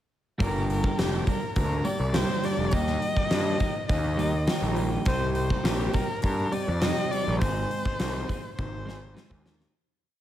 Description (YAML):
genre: quiet-loud alternative rock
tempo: 103 BPM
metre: 4/4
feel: straight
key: G phrygian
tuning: A4 = 436 Hz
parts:
  - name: clear erhu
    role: melody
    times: 0.4-9.4 s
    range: G4 to Eb5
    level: -31 LUFS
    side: left 2 dB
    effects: slapback echo
  - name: twelve-string electric guitar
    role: arpeggios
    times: 0.4-9.7 s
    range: G2 to Ab4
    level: -31 LUFS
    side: right 2 dB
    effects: none
  - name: fuzz picked electric bass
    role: bass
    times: 0.4-9.6 s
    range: F1 to G2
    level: -28 LUFS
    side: equal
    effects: overdrive
  - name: big rock drum kit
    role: drums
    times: 0.4-9.7 s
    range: hi-hat, kick drum, snare drum, toms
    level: -29 LUFS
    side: equal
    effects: none
room: light reverb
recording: none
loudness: -24 LUFS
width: side -12 dB against mid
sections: 0.4-9.7 verse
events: fade-out 7.4-9.7; drum fill 8.6-9.7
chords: 0.4 Gm; 2.7 Eb; 5.1 Cm; 7.4 Ab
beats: | 0.40 0.98 1.56 2.15 | 2.73 3.31 3.90 4.48 | 5.07 5.65 6.24 6.82 | 7.41 7.99 8.58 9.16